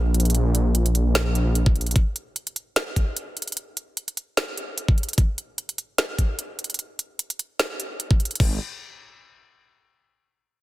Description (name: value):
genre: future bass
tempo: 149 BPM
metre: 4/4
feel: swing 54% on 16ths, half-time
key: unclear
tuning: A4 = 439 Hz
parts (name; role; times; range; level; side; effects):
- wide detuned saw bass; bass; 0.0-1.9, 8.4-8.6 s; Ab1 to Bb1; -20 LUFS; equal; chorus, sidechain pumping
- trap drum kit; drums; 0.1-8.5 s; crash cymbal, hi-hat, snare drum; -26 LUFS; equal; none
- electronic kick drum; drums; 1.7-8.5 s; none; -19 LUFS; equal; none
room: little or no reverb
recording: dense, heavily limited modern master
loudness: -22 LUFS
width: side -17 dB against mid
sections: 0.0-8.4 A section; 8.4-10.0 B section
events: none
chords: none